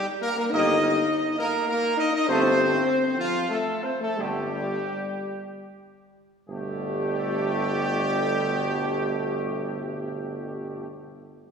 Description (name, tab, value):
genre	classical, ceremonial fanfare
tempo	71-103 BPM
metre	3/4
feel	straight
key	G major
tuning	A4 = 440 Hz
part	mellow trumpet section	melody	0.0-10.9 s	F4 to Eb5	-28 LUFS	right 1 dB	none
part	dark French horn section	sustained chords	0.0-10.9 s	F3 to Eb4	-28 LUFS	left 3 dB	none
part	warm trombone section	sustained chords	0.5-10.8 s	B2 to Bb3	-32 LUFS	right 3 dB	none
part	warm tuba	bass	0.5-10.9 s	G1	-30 LUFS	right 2 dB	none
room	wet concert hall reverb, RT60 2.1 s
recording	heard from further back in the room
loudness	-23 LUFS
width	side -6 dB against mid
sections	0.0-6.5 A section; 6.5-11.3 B section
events	slowing down 1.4-6.5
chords	0.0 Eb/G; 2.3 F/G; 4.2 N.C.; 6.5 Gadd9